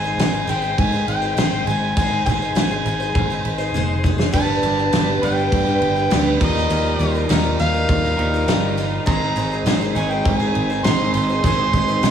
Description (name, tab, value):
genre	folk rock and heartland rock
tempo	101 BPM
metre	4/4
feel	straight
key	unclear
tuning	A4 = 440 Hz
part	mellow harmonica	melody	0.0-12.1 s	Eb5 to C6	-24 LUFS	equal	tape echo
part	picked twelve-string acoustic guitar	accompaniment	0.0-12.1 s	Eb3 to C5	-25 LUFS	left 3 dB	none
part	tonewheel organ	sustained chords	0.0-12.1 s	Eb3 to C5	-32 LUFS	right 1 dB	none
part	fingered electric bass	bass	0.0-12.1 s	F1 to Ab2	-23 LUFS	equal	none
part	loose indie drum kit	drums	0.2-12.1 s	crash cymbal, kick drum, snare drum, toms	-22 LUFS	equal	none
part	electric guitar through a small old amp	riff	4.3-12.1 s	Ab2 to B4	-24 LUFS	right 3 dB	none
room	studio ambience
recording	small room ambience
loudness	-16 LUFS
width	side -8 dB against mid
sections	0.0-12.1 A section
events	drum fill 3.7-4.3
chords	0.0 Ab; 4.3 G; 6.4 Ebadd9; 9.1 Ab